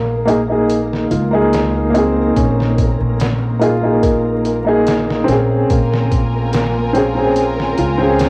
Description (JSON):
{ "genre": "trip hop", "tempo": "72 BPM", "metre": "4/4", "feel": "swing 53% on 16ths", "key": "Bb minor", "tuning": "A4 = 440 Hz", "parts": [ { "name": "dark upright piano", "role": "accompaniment", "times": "0.0-8.3 s", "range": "Bb3 to Ab4", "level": "-18 LUFS", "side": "equal", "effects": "tremolo, cassette tape, tape echo" }, { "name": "felt-muted upright piano", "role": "arpeggios", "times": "0.0-8.3 s", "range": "Bb3 to Bb4", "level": "-25 LUFS", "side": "equal", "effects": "cassette tape, analog delay" }, { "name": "upright bass", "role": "bass", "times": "0.0-8.3 s", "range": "Bb1 to Db2", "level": "-22 LUFS", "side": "equal", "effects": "none" }, { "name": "flickering grainy texture", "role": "texture", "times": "0.0-8.3 s", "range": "Bb3 to Bb4", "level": "-30 LUFS", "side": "equal", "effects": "none" }, { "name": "trip hop sampler-style drum kit", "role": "drums", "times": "0.3-8.3 s", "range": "hi-hat, kick drum, snare drum", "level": "-23 LUFS", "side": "equal", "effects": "cassette tape" }, { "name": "warm symphonic violin section", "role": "sustained chords", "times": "5.7-8.3 s", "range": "F4 to Bb5", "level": "-26 LUFS", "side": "equal", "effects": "cassette tape" } ], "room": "small room ambience", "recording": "home recording on cassette, vinyl crackle", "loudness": "-15 LUFS", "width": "mono", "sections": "0.0-8.3 A section", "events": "none", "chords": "0.0 Bbm7", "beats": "0.70 1.53 | 2.36 3.20 4.03 4.86 | 5.70 6.53 7.36 8.20" }